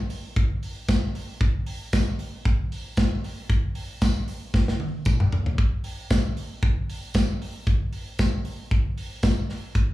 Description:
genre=disco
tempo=115 BPM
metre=4/4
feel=straight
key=none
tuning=none
part: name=modern studio drum kit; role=drums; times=0.1-9.9 s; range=hi-hat, kick drum, snare drum, toms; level=-23 LUFS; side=equal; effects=slapback echo
part: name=tambourine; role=percussion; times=0.9-9.4 s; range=none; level=-43 LUFS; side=equal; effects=slapback echo
room=light reverb, studio ambience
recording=live gig heard through the venue's PA, club reverb, small room ambience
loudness=-23 LUFS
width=side -17 dB against mid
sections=0.0-9.9 A section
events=drum fill 4.5-5.6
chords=none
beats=0.36 0.89 | 1.41 1.93 2.45 2.97 | 3.50 4.02 4.54 5.06 | 5.58 6.10 6.63 7.15 | 7.67 8.19 8.71 9.23 | 9.75

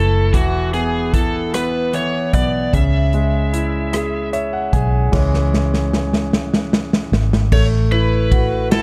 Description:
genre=six-eight pop ballad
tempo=50 BPM (dotted quarters)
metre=6/8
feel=straight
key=unclear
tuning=A4 = 442 Hz
part: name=overdriven slide guitar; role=melody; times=0.0-8.8 s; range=F#4 to E5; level=-25 LUFS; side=equal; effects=none
part: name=bright concert grand piano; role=accompaniment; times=0.0-8.8 s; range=C#3 to G#5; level=-24 LUFS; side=equal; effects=none
part: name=vintage muted fingered electric bass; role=bass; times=0.0-8.8 s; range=E1 to C#2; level=-21 LUFS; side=equal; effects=none
part: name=natural country drum kit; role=drums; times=0.3-8.8 s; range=crash cymbal, hi-hat, kick drum, ride cymbal, rim click, snare drum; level=-21 LUFS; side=equal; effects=none
room=light reverb, small room ambience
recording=dark, warm production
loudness=-17 LUFS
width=mono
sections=0.0-5.1 A section; 5.1-7.5 B section; 7.5-8.8 C section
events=grand piano fill 3.9-5.1; drum fill 5.1-7.5; grand piano solo 5.1-7.5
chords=0.3 E5; 2.7 C#m; 7.5 A5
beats=| 0.34 1.53 | 2.73 3.93 | 5.12 6.32 | 7.52 8.71

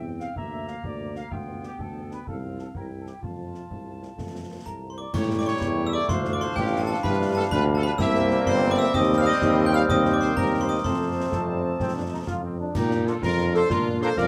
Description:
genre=military-style march for wind band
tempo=126 BPM (dotted quarters)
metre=6/8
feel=straight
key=F major, Bb major from 8.9 s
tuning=A4 = 440 Hz
part: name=dark trumpet section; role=melody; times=0.0-14.2 s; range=F4 to G5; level=-34 LUFS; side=equal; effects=none
part: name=warm woodwind section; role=second line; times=0.0-14.3 s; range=Bb3 to Bb5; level=-34 LUFS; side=equal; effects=none
part: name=dark French horn section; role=accompaniment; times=0.0-14.1 s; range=F3 to C5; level=-37 LUFS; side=equal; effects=none
part: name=warm tuba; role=bass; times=0.0-14.3 s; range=G1 to Bb2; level=-29 LUFS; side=equal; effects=none
part: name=concert snare drum, concert bass drum and clash cymbals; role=drums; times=0.2-14.3 s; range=none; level=-34 LUFS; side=equal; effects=none
part: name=warm euphonium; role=second line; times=3.7-14.3 s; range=F3 to F4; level=-34 LUFS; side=equal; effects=none
part: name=glockenspiel with brass mallets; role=second line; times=4.7-12.2 s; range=G5 to G6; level=-32 LUFS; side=equal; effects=none
part: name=mellow trombone section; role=sustained chords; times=5.1-14.1 s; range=F3 to F4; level=-34 LUFS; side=equal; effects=none
room=little or no reverb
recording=none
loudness=-24 LUFS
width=mono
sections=0.0-5.1 A section; 5.1-12.7 B section; 12.7-14.3 A section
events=none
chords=0.4 Bb/D; 1.3 G7/D; 2.3 F/C; 2.8 C7; 3.2 F; 5.1 A7; 6.1 Dm; 7.0 G7; 8.0 C7; 8.9 Cm/Eb; 10.8 F; 12.7 Bb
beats=| 0.36 0.84 | 1.32 1.79 | 2.27 2.75 | 3.23 3.70 | 4.18 4.66 | 5.13 5.61 | 6.09 6.56 | 7.04 7.51 | 7.99 8.47 | 8.94 9.42 | 9.89 10.37 | 10.85 11.32 | 11.80 12.27 | 12.75 13.22 | 13.70 14.18

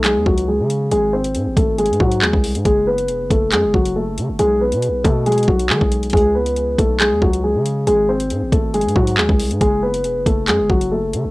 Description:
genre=hip hop, drill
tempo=138 BPM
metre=4/4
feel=half-time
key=unclear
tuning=A4 = 440 Hz
part: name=dark concert grand piano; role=melody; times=0.0-11.3 s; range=F#3 to B#4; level=-17 LUFS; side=equal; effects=low-pass filter
part: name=concert harp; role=accompaniment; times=0.0-1.9 s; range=none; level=barely audible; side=none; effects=none
part: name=distorted 808-style bass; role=bass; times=0.0-11.3 s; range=E1 to D#3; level=-22 LUFS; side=equal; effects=distortion
part: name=drill drum kit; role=drums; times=0.0-11.2 s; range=handclaps, hi-hat, kick drum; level=-18 LUFS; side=equal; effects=none
room=light reverb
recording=home recording on cassette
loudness=-14 LUFS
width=side -21 dB against mid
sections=0.0-11.3 A section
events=none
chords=0.0 C#5; 0.9 G#; 2.7 F#m; 4.4 B5; 6.1 C#5; 7.9 G#; 9.6 F#m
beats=0.04 0.48 | 0.91 1.35 1.78 2.22 | 2.65 3.09 3.52 3.96 | 4.39 4.83 5.26 5.70 | 6.13 6.57 7.00 7.44 | 7.87 8.30 8.74 9.18 | 9.61 10.04 10.48 10.91

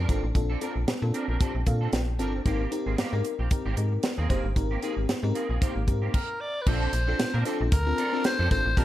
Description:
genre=early-eighties boogie funk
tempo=114 BPM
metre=4/4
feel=swing 56% on 16ths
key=Bb major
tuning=A4 = 440 Hz
part: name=electric guitar at the edge of break-up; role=riff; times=0.0-8.8 s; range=Bb3 to Bb4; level=-35 LUFS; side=right 4 dB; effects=ensemble chorus
part: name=slap-like FM bass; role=bass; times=0.0-8.8 s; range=Gb1 to Bb2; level=-27 LUFS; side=equal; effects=none
part: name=FM electric piano with soft pad layer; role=accompaniment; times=0.1-8.8 s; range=C4 to A5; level=-32 LUFS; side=left 3 dB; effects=chorus, phaser
part: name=tight funk drum kit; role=drums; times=0.1-8.8 s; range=crash cymbal, hi-hat, kick drum, snare drum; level=-27 LUFS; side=equal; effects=none
part: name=growling alto saxophone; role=melody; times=6.1-8.8 s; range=Bb4 to D5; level=-29 LUFS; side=left 1 dB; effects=none
room=light reverb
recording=none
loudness=-24 LUFS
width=side -14 dB against mid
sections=0.0-6.7 A section; 6.7-8.8 B section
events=FM electric piano fill 1.4-2.5; stop 6.1-6.7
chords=0.0 Bbmaj9; 2.5 Abmaj9; 6.7 Bbmaj9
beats=| 0.35 0.88 1.41 1.93 | 2.46 2.98 3.51 4.04 | 4.56 5.09 5.62 6.14 | 6.67 7.20 7.72 8.25 | 8.77

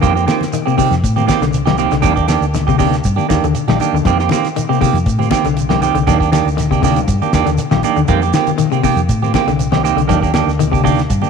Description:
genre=afrobeat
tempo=119 BPM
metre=4/4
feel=swing 53% on 16ths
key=unclear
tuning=A4 = 440 Hz
part: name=semi-hollow electric guitar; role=stabs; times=0.0-11.3 s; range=Eb3 to G4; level=-16 LUFS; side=right 11 dB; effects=none
part: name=hollow-body short-scale fingered electric bass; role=bass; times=0.0-11.2 s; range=Bb1 to A2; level=-18 LUFS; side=left 1 dB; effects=none
part: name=damped 70s drum kit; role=drums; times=0.0-11.2 s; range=hi-hat, kick drum, snare drum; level=-20 LUFS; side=left 1 dB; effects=none
part: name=congas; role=percussion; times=0.0-11.3 s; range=none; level=-22 LUFS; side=left 12 dB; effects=none
part: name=shekere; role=percussion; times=0.0-11.3 s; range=none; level=-27 LUFS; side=right 8 dB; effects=none
part: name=electric guitar at the edge of break-up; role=arpeggios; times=0.5-11.0 s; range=C3 to Eb3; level=-20 LUFS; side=left 11 dB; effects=spring reverb, slapback echo
room=moderate echo chamber reverb, RT60 2.3 s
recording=1960s-style stereo with parts hard left and right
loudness=-12 LUFS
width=side -6 dB against mid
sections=0.0-11.3 A section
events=none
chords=0.0 F9sus4; 2.0 Ebmaj7; 4.1 F9sus4; 6.1 Ebmaj7; 8.1 F9sus4; 10.1 Ebmaj7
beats=| 0.03 0.53 1.03 1.54 | 2.04 2.54 3.05 3.55 | 4.05 4.56 5.06 5.57 | 6.07 6.57 7.08 7.58 | 8.08 8.59 9.09 9.59 | 10.10 10.60 11.10

